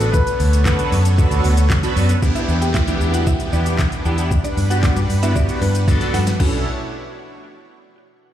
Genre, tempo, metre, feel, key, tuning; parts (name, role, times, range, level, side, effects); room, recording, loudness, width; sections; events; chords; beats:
dance-pop; 115 BPM; 4/4; straight; B minor; A4 = 440 Hz
clear grand piano; melody; 0.0-1.7 s; A4 to B4; -25 LUFS; left 4 dB; tape echo
big bright polysynth; accompaniment; 0.0-6.6 s; B3 to B4; -24 LUFS; right 1 dB; chorus, phaser, sidechain pumping
supersaw pad; sustained chords; 0.0-6.6 s; B2 to F#5; -28 LUFS; equal; sidechain pumping
vintage muted fingered electric bass; bass; 0.0-6.6 s; A1 to G2; -18 LUFS; equal; sidechain pumping
smooth R&B drum kit; drums; 0.0-6.5 s; crash cymbal, handclaps, hi-hat, kick drum, shaker, snare drum; -20 LUFS; equal
downlifter; sound effects; 2.2-6.4 s; -30 LUFS; right 2 dB
mallet-like synth pluck; melody; 2.4-6.6 s; B3 to G5; -28 LUFS; equal; chorus, sidechain pumping, tape echo
little or no reverb; played on a big sound system in a bare room, large studio reverb; -15 LUFS; side -11 dB against mid
0.0-2.2 A section; 2.2-6.4 B section; 6.4-8.3 C section
drum fill 5.9-6.4
0.1 Bm7; 2.2 Em7; 4.3 Gmaj7; 6.4 Bm11
| 0.14 0.66 1.18 1.70 | 2.23 2.75 3.27 3.79 | 4.31 4.83 5.36 5.88 | 6.40